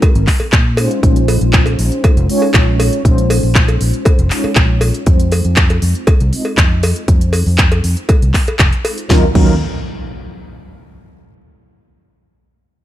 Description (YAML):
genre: nu-disco, nu disco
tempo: 119 BPM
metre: 4/4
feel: straight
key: unclear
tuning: A4 = 441 Hz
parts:
  - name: mellow synth brass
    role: accompaniment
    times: 0.0-9.5 s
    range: Gb3 to Eb5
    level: -19 LUFS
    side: equal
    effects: chorus, dub echo
  - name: electronic kick drum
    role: drums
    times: 0.0-9.5 s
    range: none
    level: -12 LUFS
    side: equal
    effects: studio reverb
  - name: house drum kit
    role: drums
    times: 0.0-9.5 s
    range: crash cymbal, handclaps, hi-hat, snare drum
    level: -19 LUFS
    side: equal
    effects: studio reverb
  - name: cowbell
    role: percussion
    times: 0.0-9.0 s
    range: none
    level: -21 LUFS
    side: left 1 dB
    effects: none
  - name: fingered electric bass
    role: bass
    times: 0.2-9.6 s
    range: F1 to Bb2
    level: -15 LUFS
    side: equal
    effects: sidechain pumping
  - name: impact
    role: sound effects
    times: 9.1-11.1 s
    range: none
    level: -24 LUFS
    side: equal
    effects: none
room: little or no reverb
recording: none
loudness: -10 LUFS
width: side -13 dB against mid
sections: 0.0-9.1 A section; 9.1-11.1 B section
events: none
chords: 0.0 Ab7; 0.8 Bbm11; 5.1 Fm7; 9.1 Ebm9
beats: 0.02 0.53 | 1.03 1.54 2.04 2.54 | 3.05 3.55 4.06 4.56 | 5.07 5.57 6.07 6.58 | 7.08 7.59 8.09 8.60 | 9.10 9.60 10.11 10.61